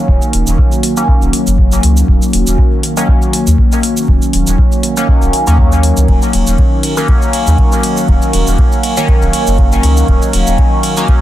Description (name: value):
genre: dub techno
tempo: 120 BPM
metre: 4/4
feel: swing 55% on 16ths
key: Eb minor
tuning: A4 = 438 Hz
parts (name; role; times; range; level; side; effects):
- resonant sweep polysynth; stabs; 0.0-11.2 s; Eb3 to Db4; -14 LUFS; left 1 dB; chorus, phaser, sidechain pumping, dub echo
- soft dub sub bass; bass; 0.1-10.6 s; Eb1 to Eb2; -12 LUFS; equal; sidechain pumping
- electronic kick drum; drums; 0.1-11.2 s; none; -11 LUFS; equal; none
- booming analog drum machine; drums; 0.2-11.2 s; hi-hat, ride cymbal, shaker; -20 LUFS; right 1 dB; none
room: little or no reverb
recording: dense, heavily limited modern master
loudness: -9 LUFS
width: side -13 dB against mid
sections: 0.0-11.2 A section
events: none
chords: 0.0 Ebm7